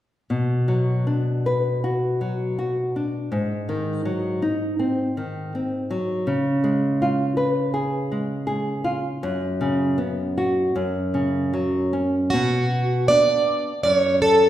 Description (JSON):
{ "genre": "fado-style ballad", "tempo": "80 BPM", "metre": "4/4", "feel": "rubato", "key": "unclear", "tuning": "A4 = 440 Hz", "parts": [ { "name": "nylon-string guitar", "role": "accompaniment", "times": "0.3-14.5 s", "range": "F#2 to B4", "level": "-21 LUFS", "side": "equal", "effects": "none" }, { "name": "picked plugged-in twelve-string acoustic guitar", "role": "melody", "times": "12.3-14.5 s", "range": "F#4 to D5", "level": "-17 LUFS", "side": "right 2 dB", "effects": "none" } ], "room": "wet recital hall reverb, RT60 1.4 s", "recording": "recorded in a church or concert hall", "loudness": "-20 LUFS", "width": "side -12 dB against mid", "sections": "0.3-12.3 A section; 12.3-14.5 B section", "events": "none", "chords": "0.3 Bm; 3.3 G#7; 6.3 C#7; 9.2 F#sus4; 10.8 F#5; 12.3 Bm", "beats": "| 0.29 1.05 1.81 2.57 | 3.31 4.05 4.79 5.53 | 6.26 7.00 7.74 8.49 | 9.23 9.99 10.75 11.54 | 12.32 13.09 13.86" }